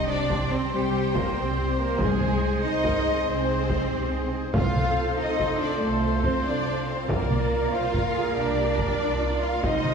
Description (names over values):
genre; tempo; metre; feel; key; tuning
cinematic, epic orchestral film score; 94 BPM (dotted quarters); 12/8; straight; unclear; A4 = 441 Hz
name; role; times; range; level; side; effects
warm symphonic violin section; melody; 0.0-9.9 s; G4 to F5; -34 LUFS; left 5 dB; none
mellow large flute ensemble; second line; 0.0-9.9 s; G4 to F5; -31 LUFS; left 3 dB; none
warm symphonic violin section; second line; 0.0-9.9 s; G4 to F5; -35 LUFS; left 3 dB; none
mellow French horn section; sustained chords; 0.0-9.9 s; G3 to F4; -36 LUFS; left 3 dB; none
warm symphonic string section; sustained chords; 0.0-9.9 s; G3 to G5; -36 LUFS; equal; none
mellow trumpet section; stabs; 0.0-9.9 s; Bb4 to C5; -32 LUFS; right 3 dB; none
rich symphonic cello section; bass; 0.0-9.9 s; G3 to F4; -29 LUFS; right 3 dB; none
timpani; percussion; 0.0-7.7 s; C3; -34 LUFS; left 4 dB; none
impact; sound effects; 0.0-2.0 s; none; -45 LUFS; equal; none
warm symphonic double bass section; bass; 0.1-9.9 s; C2; -30 LUFS; right 2 dB; none
taiko ensemble; drums; 0.3-9.9 s; none; -29 LUFS; right 1 dB; none
warm symphonic viola section; accompaniment; 0.7-9.9 s; F4 to D5; -35 LUFS; right 1 dB; none
room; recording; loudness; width
wet scoring stage reverb, RT60 1.6 s; heard from further back in the room; -22 LUFS; side -6 dB against mid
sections
0.0-9.9 A section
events
impact 0.0-2.0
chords
0.0 C5; 2.0 Ab/C; 4.5 F/C; 7.1 Bb/C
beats
0.09 0.72 1.36 | 2.00 2.63 3.27 3.90 | 4.54 5.17 5.81 6.45 | 7.08 7.72 8.36 9.00 | 9.63